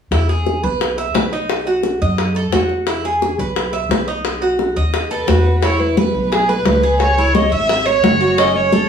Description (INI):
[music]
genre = latin, Cuban son and guajira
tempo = 174 BPM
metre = 4/4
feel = straight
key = E major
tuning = A4 = 440 Hz
[part]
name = Cuban tres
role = arpeggios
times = 0.1-8.9 s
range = C#4 to E5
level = -19 LUFS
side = right 3 dB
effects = none
[part]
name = upright bass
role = bass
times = 0.1-8.8 s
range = F#1 to F#2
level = -20 LUFS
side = equal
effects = none
[part]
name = bongos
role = percussion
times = 0.1-8.9 s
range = none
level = -21 LUFS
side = left 4 dB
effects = none
[part]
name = dark violin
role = melody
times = 5.1-8.9 s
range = G#4 to E5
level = -18 LUFS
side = equal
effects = none
[part]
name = congas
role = percussion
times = 5.6-8.9 s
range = none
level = -20 LUFS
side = equal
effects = none
[sound]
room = wet studio reverb, RT60 0.6 s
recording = heard from further back in the room, studio reverb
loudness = -14 LUFS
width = side -7 dB against mid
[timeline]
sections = 0.1-5.6 A section; 5.6-8.9 B section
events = none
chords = 0.1 E; 1.5 B7; 2.9 E; 4.3 B7; 5.6 E; 7.0 C#m; 8.4 F#m